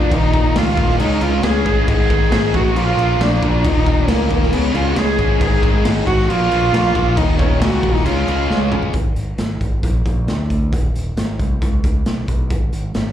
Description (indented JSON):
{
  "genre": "quiet-loud alternative rock",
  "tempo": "136 BPM",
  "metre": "4/4",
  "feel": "straight",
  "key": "unclear",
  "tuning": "A4 = 442 Hz",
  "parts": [
    { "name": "rich cello", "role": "melody", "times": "0.0-8.7 s", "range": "Bb3 to Ab4", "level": "-19 LUFS", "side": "right 1 dB", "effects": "slapback echo" },
    { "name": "cranked stack guitar", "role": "riff", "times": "0.0-8.9 s", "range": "Eb2 to Db4", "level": "-23 LUFS", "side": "left 13 dB", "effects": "overdrive, slapback echo" },
    { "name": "sludgy distorted guitar", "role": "riff", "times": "0.0-8.9 s", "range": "Eb2 to Db4", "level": "-25 LUFS", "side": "right 10 dB", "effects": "overdrive, slapback echo" },
    { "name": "tight distorted guitar", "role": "riff", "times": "0.0-8.9 s", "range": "Eb2 to Db4", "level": "-29 LUFS", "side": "equal", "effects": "none" },
    { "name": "growling fingered electric bass", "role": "bass", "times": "0.0-13.1 s", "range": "Eb1 to D2", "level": "-20 LUFS", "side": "equal", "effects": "overdrive" },
    { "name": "raw garage drum kit", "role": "drums", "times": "0.1-13.1 s", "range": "crash cymbal, hi-hat, kick drum, snare drum, toms", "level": "-19 LUFS", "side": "equal", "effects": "none" }
  ],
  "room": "little or no reverb",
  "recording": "live gig heard through the venue's PA, club reverb",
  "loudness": "-14 LUFS",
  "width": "side -10 dB against mid",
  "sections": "0.0-8.9 A section; 8.9-13.1 B section",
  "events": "drum fill 8.5-8.9",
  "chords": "0.1 Eb5; 1.0 Db5; 1.9 Ab5; 2.8 Bb; 3.6 Eb5; 4.5 Db5; 5.4 Ab5; 6.3 Bb5; 7.2 Eb5; 8.1 Db; 8.9 N.C.; 9.8 Bb; 10.7 Ab/Eb; 11.6 Bsus2; 12.5 N.C.",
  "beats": "| 0.12 0.56 1.00 1.44 | 1.88 2.32 2.76 3.20 | 3.64 4.08 4.52 4.96 | 5.40 5.84 6.29 6.73 | 7.17 7.61 8.05 8.50 | 8.94 9.38 9.83 10.28 | 10.72 11.17 11.62 12.06 | 12.51 12.96"
}